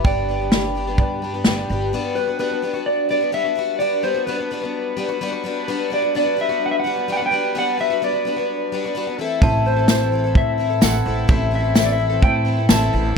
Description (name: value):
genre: indie folk with a building arrangement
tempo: 128 BPM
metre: 4/4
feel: straight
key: G major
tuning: A4 = 440 Hz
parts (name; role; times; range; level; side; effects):
- mellow electric guitar; melody; 0.0-13.1 s; B4 to A5; -21 LUFS; equal; harmonic tremolo
- glockenspiel with hard plastic mallets; second line; 0.0-1.7, 9.4-13.2 s; G5 to B5; -30 LUFS; right 2 dB; none
- picked plugged-in twelve-string acoustic guitar; accompaniment; 0.0-13.2 s; G2 to A4; -25 LUFS; left 6 dB; none
- warm upright piano; accompaniment; 0.0-2.0, 9.4-13.2 s; G1 to A5; -29 LUFS; right 4 dB; none
- upright bass; bass; 0.0-1.9, 9.4-13.2 s; G1 to A2; -22 LUFS; right 1 dB; none
- natural country drum kit; drums; 0.0-1.6, 9.4-12.8 s; kick drum, snare drum; -16 LUFS; equal; none
- mellow brass ensemble; sustained chords; 1.9-13.2 s; F#3 to B4; -30 LUFS; right 1 dB; none
- tambourine; percussion; 9.9-12.8 s; none; -29 LUFS; right 18 dB; none
room: light reverb, small room reverb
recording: none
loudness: -17 LUFS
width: side -5 dB against mid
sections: 0.0-1.9 A section; 1.9-13.2 A section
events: upright piano fill 1.0-1.9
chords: 0.1 G; 1.9 Gmaj7; 9.2 Am